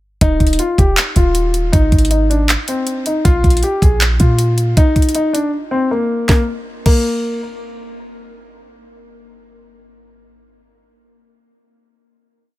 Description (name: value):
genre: hip hop, trap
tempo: 158 BPM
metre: 4/4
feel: half-time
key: Eb major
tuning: A4 = 440 Hz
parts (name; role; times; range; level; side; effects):
- dark concert grand piano; melody; 0.2-7.4 s; Bb3 to Ab4; -18 LUFS; left 1 dB; tape echo
- clean 808-style bass; bass; 0.2-4.7 s; Eb1 to Bb2; -15 LUFS; equal; none
- trap drum kit; drums; 0.2-7.0 s; crash cymbal, handclaps, hi-hat, kick drum, snare drum; -14 LUFS; equal; none
room: digital ambience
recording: faint mains hum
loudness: -12 LUFS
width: side -17 dB against mid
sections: 0.2-6.3 hook; 6.3-9.3 final note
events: break 5.5-6.3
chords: 0.2 Ebsus2; 1.7 Ab; 3.3 Bb5; 4.8 N.C.